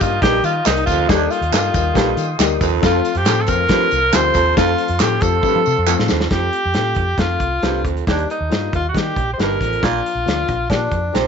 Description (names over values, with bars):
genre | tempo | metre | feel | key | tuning
uptempo 1960s-style soul | 138 BPM | 4/4 | straight | unclear | A4 = 441 Hz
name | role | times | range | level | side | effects
clear tenor saxophone | melody | 0.0-11.3 s | C4 to C5 | -19 LUFS | equal | none
dark upright piano | accompaniment | 0.0-11.3 s | F3 to C5 | -23 LUFS | left 14 dB | none
tonewheel organ | sustained chords | 0.0-6.3 s | C5 to Eb6 | -30 LUFS | right 1 dB | slow rotary speaker, overdrive
vintage muted fingered electric bass | bass | 0.0-11.3 s | G1 to F3 | -22 LUFS | right 1 dB | none
warm soul drum kit | drums | 0.0-11.2 s | hi-hat, kick drum, snare drum | -21 LUFS | equal | none
tambourine and handclaps | percussion | 0.0-6.2 s | none | -25 LUFS | right 7 dB | none
raspy baritone saxophone | riff | 0.2-11.3 s | Eb2 to C3 | -23 LUFS | right 16 dB | none
room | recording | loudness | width
light reverb, small room reverb | 1960s-style stereo with parts hard left and right, nothing above 7.8 kHz | -15 LUFS | side -6 dB against mid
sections
0.0-6.3 A section; 6.3-11.3 B section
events
drum fill 5.4-6.3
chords
0.0 Eb; 2.8 F; 8.1 Eb; 9.8 Bb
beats
0.22 0.66 | 1.09 1.53 1.96 2.40 | 2.83 3.26 3.70 4.13 | 4.57 5.00 5.44 5.88 | 6.31 6.75 7.19 7.63 | 8.07 8.51 8.94 9.38 | 9.82 10.26 10.70 11.14